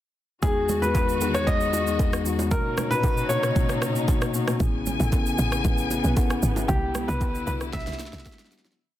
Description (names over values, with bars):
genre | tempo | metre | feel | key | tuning
amapiano | 115 BPM | 4/4 | straight | E major | A4 = 435 Hz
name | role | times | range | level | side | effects
clear grand piano | melody | 0.4-8.5 s | G4 to E5 | -27 LUFS | left 1 dB | ping-pong delay
mellow tine electric piano | accompaniment | 0.4-8.8 s | E2 to G#5 | -28 LUFS | left 3 dB | wide subtle chorus
warm studio string section | sustained chords | 0.4-8.8 s | E2 to G#5 | -32 LUFS | left 1 dB | sidechain pumping
afro-pop drum kit | drums | 0.4-8.8 s | kick drum, rim click, shaker, snare drum | -26 LUFS | right 1 dB | none
congas and bongos | percussion | 0.4-8.8 s | none | -35 LUFS | right 4 dB | none
tight log drum bass | bass | 4.6-8.2 s | G#1 to C2 | -27 LUFS | equal | none
room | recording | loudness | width
light reverb, small room reverb | dense, heavily limited modern master | -22 LUFS | side -13 dB against mid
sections
0.4-8.8 groove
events
fade-out 6.7-8.8; drum fill 7.7-8.8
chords
0.4 Emaj9; 2.5 Bmaj9; 4.6 Amaj9; 6.7 Cmaj9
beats
| 0.43 0.95 1.47 1.99 | 2.52 3.04 3.56 4.08 | 4.60 5.12 5.65 6.17 | 6.69 7.21 7.73 8.26